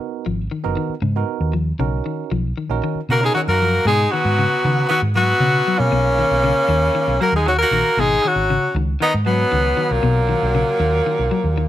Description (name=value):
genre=afrobeat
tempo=117 BPM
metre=4/4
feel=straight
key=G# minor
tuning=A4 = 440 Hz
part: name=barky tine electric piano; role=accompaniment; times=0.0-3.6 s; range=B3 to A#4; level=-26 LUFS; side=right 13 dB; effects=none
part: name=clean electric guitar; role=arpeggios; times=0.3-11.7 s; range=B2 to F#3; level=-25 LUFS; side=left 5 dB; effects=none
part: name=hollow-body short-scale fingered electric bass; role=bass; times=0.3-11.7 s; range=F#1 to C#3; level=-20 LUFS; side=right 1 dB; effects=none
part: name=bright tenor saxophone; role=melody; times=3.1-11.7 s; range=A#3 to A#4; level=-18 LUFS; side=left 2 dB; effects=none
part: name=raspy baritone saxophone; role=second line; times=3.1-11.7 s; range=A#2 to A#3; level=-26 LUFS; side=right 12 dB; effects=none
part: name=raspy tenor saxophone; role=second line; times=3.1-11.7 s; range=F#3 to F#4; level=-25 LUFS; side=right 4 dB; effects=none
room=light reverb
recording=none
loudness=-16 LUFS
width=side -12 dB against mid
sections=0.0-3.9 A section; 3.9-11.7 B section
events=none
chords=0.0 G#m9; 1.8 Bmaj9; 3.9 G#m7; 5.9 Bmaj9; 8.0 G#m7; 10.0 Bmaj7